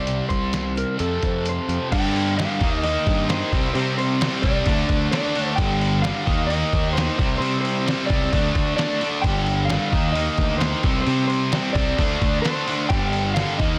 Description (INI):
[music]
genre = quiet-loud alternative rock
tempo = 131 BPM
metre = 4/4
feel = straight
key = G minor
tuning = A4 = 440 Hz
[part]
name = mellow electric guitar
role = melody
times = 0.0-13.8 s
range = A4 to G5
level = -30 LUFS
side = equal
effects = none
[part]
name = fingerpicked steel-string acoustic guitar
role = arpeggios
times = 0.0-1.9 s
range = F2 to C4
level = -35 LUFS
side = equal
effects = none
[part]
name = cranked stack guitar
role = riff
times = 0.0-13.8 s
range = F2 to Eb4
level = -27 LUFS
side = equal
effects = overdrive
[part]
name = growling picked electric bass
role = bass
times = 0.0-13.8 s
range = G1 to C3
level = -28 LUFS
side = equal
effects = overdrive
[part]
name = lo-fi sampler-style drum kit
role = drums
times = 0.1-13.7 s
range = crash cymbal, hi-hat, kick drum, snare drum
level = -27 LUFS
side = equal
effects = none
[part]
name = overdriven semi-hollow guitar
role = riff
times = 1.9-13.8 s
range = G2 to Eb4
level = -30 LUFS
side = equal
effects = none
[sound]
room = light reverb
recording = dense, heavily limited modern master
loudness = -21 LUFS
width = mono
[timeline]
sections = 0.0-1.9 A section; 1.9-13.8 B section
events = kick and snare drop out 1.5-1.9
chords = 0.0 Cm; 1.0 F; 1.9 G5; 2.6 Eb; 3.5 C5; 4.7 D5; 5.6 G5; 6.3 Eb5; 7.2 C5; 8.3 D5; 9.2 G5; 9.9 Eb5; 10.8 C5; 12.0 D5; 12.9 G5